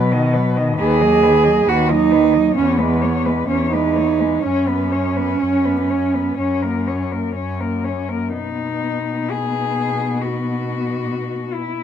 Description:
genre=classical, lyrical piece for cello ensemble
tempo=60-68 BPM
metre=4/4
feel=rubato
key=B major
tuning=A4 = 440 Hz
part: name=muted cello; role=melody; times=0.0-11.8 s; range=D#4 to D#5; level=-25 LUFS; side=left 7 dB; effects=none
part: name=muted cello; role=accompaniment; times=0.0-11.8 s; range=D#3 to C#4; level=-24 LUFS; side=left 4 dB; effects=none
part: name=muted cello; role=bass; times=0.0-11.8 s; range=D#2 to B2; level=-22 LUFS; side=equal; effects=none
part: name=muted cello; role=second line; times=0.8-11.8 s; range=B3 to G#4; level=-19 LUFS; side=right 6 dB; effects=none
room=light reverb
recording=close, detailed microphones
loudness=-16 LUFS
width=side -9 dB against mid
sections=0.0-8.3 A section; 8.3-11.8 B section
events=none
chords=0.0 B; 0.8 B/D#; 2.6 C#m7/E; 4.4 F#sus4; 6.4 F#; 8.3 B

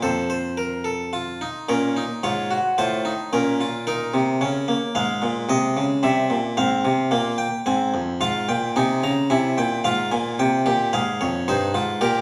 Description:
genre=classical, baroque-style 3-part fugue for harpsichord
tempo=110 BPM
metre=3/4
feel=straight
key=F minor from 8.2 s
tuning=A4 = 441 Hz
part: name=harpsichord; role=solo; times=0.0-12.2 s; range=F2 to Bb5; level=-22 LUFS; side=equal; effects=none
room=wet recital hall reverb, RT60 1.3 s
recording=small room reverb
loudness=-22 LUFS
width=mono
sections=0.0-1.7 A section; 1.7-8.2 B section; 8.2-12.2 C section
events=none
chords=0.0 F; 1.7 Bbm; 2.8 F/A; 3.3 Bbm; 4.4 Bbm/Db; 5.0 Fm/Ab; 6.0 C; 6.6 Fm/Ab; 9.3 C; 9.8 Fm/Ab; 11.5 Cm/G

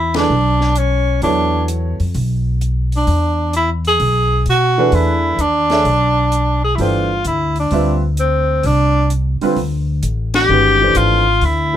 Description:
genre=modal jazz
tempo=130 BPM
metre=4/4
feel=swing 68% on 8ths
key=E phrygian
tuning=A4 = 441 Hz
part: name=clear tenor saxophone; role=melody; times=0.0-11.8 s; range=C4 to G#4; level=-15 LUFS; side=equal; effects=none
part: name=upright bass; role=bass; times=0.0-11.8 s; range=G1 to B2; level=-17 LUFS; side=equal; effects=none
part: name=compact cocktail drum kit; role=drums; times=0.1-11.6 s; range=hi-hat, ride cymbal, snare drum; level=-28 LUFS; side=left 3 dB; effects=none
part: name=clear upright piano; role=accompaniment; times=0.2-1.9, 4.8-11.8 s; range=D3 to E5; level=-19 LUFS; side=right 4 dB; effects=none
room=little or no reverb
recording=close, detailed microphones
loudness=-13 LUFS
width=side -10 dB against mid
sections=0.0-11.8 A section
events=band accent 0.1, 10.3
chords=0.0 E7sus4; 6.8 Gsus4

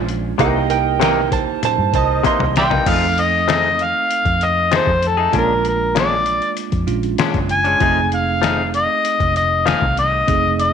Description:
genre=straight-eighth soul blues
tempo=97 BPM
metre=4/4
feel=straight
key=F mixolydian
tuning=A4 = 440 Hz
part: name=direct-recorded clean electric guitar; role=second line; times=0.0-2.9 s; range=Bb4 to C6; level=-18 LUFS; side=right 13 dB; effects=lush chorus
part: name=bell-like tine electric piano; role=accompaniment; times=0.0-10.7 s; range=Ab3 to A4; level=-25 LUFS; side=right 13 dB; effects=fast stereo tremolo
part: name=vintage muted fingered electric bass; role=bass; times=0.0-10.7 s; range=F1 to G2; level=-23 LUFS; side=equal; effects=none
part: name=trip hop sampler-style drum kit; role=drums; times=0.1-10.7 s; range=crash cymbal, hi-hat, kick drum, snare drum, toms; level=-23 LUFS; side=left 4 dB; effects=none
part: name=warm horn section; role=sustained chords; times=0.4-2.4 s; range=Bb4 to D#5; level=-28 LUFS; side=right 1 dB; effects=none
part: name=direct-recorded clean electric guitar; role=stabs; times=0.4-9.9 s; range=Bb2 to G#4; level=-23 LUFS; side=left 10 dB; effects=wide subtle chorus
part: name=overdriven harmonica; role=melody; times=2.6-10.7 s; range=A4 to Ab5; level=-17 LUFS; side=left 2 dB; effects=none
room=light reverb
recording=1960s-style stereo with parts hard left and right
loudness=-14 LUFS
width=side -7 dB against mid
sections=0.0-2.9 A section; 2.9-10.7 B section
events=clean electric guitar solo 0.0-2.9; drum fill 1.6-2.9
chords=0.4 C7#9; 2.9 F7#9; 5.3 Bb7#9; 7.8 F7#9

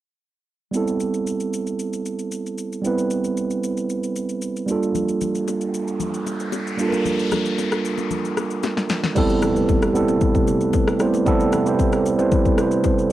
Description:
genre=amapiano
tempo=114 BPM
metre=4/4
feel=straight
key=unclear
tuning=A4 = 441 Hz
part: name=mellow tine electric piano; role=accompaniment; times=0.7-13.1 s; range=G3 to C5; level=-20 LUFS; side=right 3 dB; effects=cassette tape
part: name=deep house drum kit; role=drums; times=0.7-13.1 s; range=crash cymbal, kick drum, rim click, shaker, snare drum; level=-24 LUFS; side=left 2 dB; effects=overdrive, cassette tape
part: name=congas and bongos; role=percussion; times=4.9-13.0 s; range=none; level=-32 LUFS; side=left 9 dB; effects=none
part: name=noise sweep and impact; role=sound effects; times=5.5-11.3 s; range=none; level=-32 LUFS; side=left 3 dB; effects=none
part: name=hollow soft pad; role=sustained chords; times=9.2-13.1 s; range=C3 to B4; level=-27 LUFS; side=left 2 dB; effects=chorus, cassette tape
room=moderate studio reverb, RT60 0.6 s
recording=home recording on cassette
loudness=-19 LUFS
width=side -13 dB against mid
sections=0.7-9.2 A section; 9.2-13.1 B section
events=noise sweep 5.5-9.2; drum fill 8.6-9.2; impact 9.2-11.3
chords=0.7 Am9; 4.7 Gm9; 9.2 Am9

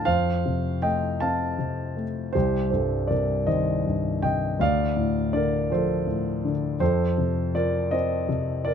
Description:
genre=classical, lyrical solo piano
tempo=53 BPM (dotted quarters)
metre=6/8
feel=rubato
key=unclear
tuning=A4 = 439 Hz
part: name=dark grand piano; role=solo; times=0.0-8.7 s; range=C2 to A5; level=-22 LUFS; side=equal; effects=none
room=light reverb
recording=close, detailed microphones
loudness=-22 LUFS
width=side -8 dB against mid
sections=0.0-8.7 A section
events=none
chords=0.1 F; 2.3 Cm; 4.6 Dm; 6.8 F

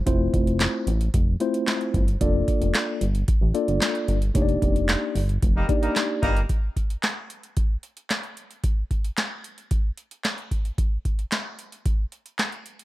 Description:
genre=early-eighties boogie funk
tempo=112 BPM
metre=4/4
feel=straight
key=unclear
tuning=A4 = 440 Hz
part: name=chorused synth bass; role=bass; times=0.0-6.5 s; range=F1 to A1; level=-24 LUFS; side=equal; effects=none
part: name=mellow tine electric piano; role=accompaniment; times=0.1-6.3 s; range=A3 to D5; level=-25 LUFS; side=left 1 dB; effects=medium stereo tremolo
part: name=booming analog drum machine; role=drums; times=0.1-12.8 s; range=handclaps, hi-hat, kick drum, snare drum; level=-24 LUFS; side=equal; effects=overdrive
part: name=mellow horn section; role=second line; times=5.6-6.4 s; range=G3 to Bb4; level=-29 LUFS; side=equal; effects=none
room=digital ambience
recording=none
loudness=-22 LUFS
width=side -16 dB against mid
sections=0.0-6.5 A section; 6.5-12.8 B section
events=band accent 4.4-6.5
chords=0.0 Fmaj7; 2.2 Bbmaj7/F; 4.4 Ebmaj7/F; 6.5 N.C.

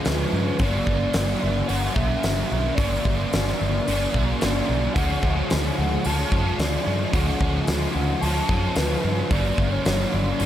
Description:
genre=rock, shoegaze and dream pop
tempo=110 BPM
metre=4/4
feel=straight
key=D major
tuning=A4 = 438 Hz
part: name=overdriven electric guitar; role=riff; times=0.0-10.5 s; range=G2 to D4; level=-25 LUFS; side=equal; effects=analog chorus
part: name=huge arena drum kit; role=drums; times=0.0-10.5 s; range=hi-hat, kick drum, snare drum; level=-26 LUFS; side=equal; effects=none
part: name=hollow clarinet-like synth lead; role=melody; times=0.1-10.5 s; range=B4 to A5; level=-30 LUFS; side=equal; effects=chorus, analog delay
part: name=vintage muted fingered electric bass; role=bass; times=0.1-10.5 s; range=G1 to G2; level=-26 LUFS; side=equal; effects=none
room=light reverb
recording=none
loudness=-20 LUFS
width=side -11 dB against mid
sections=0.0-10.5 A section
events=none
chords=0.0 D6; 0.6 G; 5.0 D; 9.3 G

